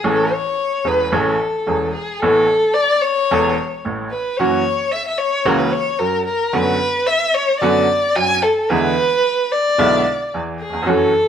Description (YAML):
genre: tango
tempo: 111 BPM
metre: 4/4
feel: rubato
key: A major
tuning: A4 = 440 Hz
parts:
  - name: dark violin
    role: second line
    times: 0.0-11.3 s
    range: G#4 to G#5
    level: -17 LUFS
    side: left 1 dB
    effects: none
  - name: bright baby grand piano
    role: accompaniment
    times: 0.0-11.1 s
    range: E1 to A4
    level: -18 LUFS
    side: right 2 dB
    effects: none
room: wet studio reverb, RT60 0.8 s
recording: band playing live in one room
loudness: -15 LUFS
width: side -8 dB against mid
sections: 0.0-2.2 A section; 2.2-11.3 A section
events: violin solo 0.0-2.2, 2.2-11.3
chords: 0.0 Amaj7; 2.2 Asus2; 4.4 F#7; 6.5 Bm7/F#; 8.7 E7